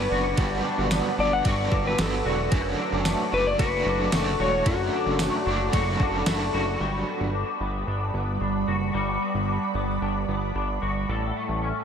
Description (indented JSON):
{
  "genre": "dream pop",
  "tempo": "112 BPM",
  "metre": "4/4",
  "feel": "straight",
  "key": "G lydian",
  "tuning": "A4 = 440 Hz",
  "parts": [
    { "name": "clean lap steel guitar", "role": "melody", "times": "0.0-6.5 s", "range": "F#4 to F#5", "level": "-28 LUFS", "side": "left 4 dB", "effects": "ping-pong delay" },
    { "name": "overdriven electric guitar", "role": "accompaniment", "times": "0.0-7.3 s", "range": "F#2 to D4", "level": "-30 LUFS", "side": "right 4 dB", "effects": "tremolo, analog chorus" },
    { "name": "ethereal airy pad", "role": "sustained chords", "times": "0.0-11.8 s", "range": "G3 to E6", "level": "-31 LUFS", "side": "right 2 dB", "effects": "ensemble chorus, built-in reverb" },
    { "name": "twangy electric guitar", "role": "arpeggios", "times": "0.0-11.8 s", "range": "F#2 to A4", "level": "-29 LUFS", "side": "left 3 dB", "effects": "ensemble chorus, ping-pong delay" },
    { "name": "fat analog bass", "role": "bass", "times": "0.0-11.7 s", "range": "E1 to A1", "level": "-29 LUFS", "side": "equal", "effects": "none" },
    { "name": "detuned 8-bit digital drum machine", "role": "drums", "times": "0.4-6.4 s", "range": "kick drum, ride cymbal, snare drum, tambourine", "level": "-28 LUFS", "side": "equal", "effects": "overdrive" }
  ],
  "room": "light reverb, digital ambience",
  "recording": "none",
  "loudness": "-22 LUFS",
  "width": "side -7 dB against mid",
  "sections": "0.0-6.8 A section; 6.8-11.8 B section",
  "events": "none",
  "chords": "0.0 Gmaj7; 2.5 Dmaj7; 6.8 Gmaj7; 11.1 A7",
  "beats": "| 0.38 0.91 1.45 1.98 | 2.52 3.05 3.59 4.12 | 4.66 5.20 5.73 6.27 | 6.80 7.34 7.88 8.41 | 8.95 9.48 10.02 10.55 | 11.09 11.62"
}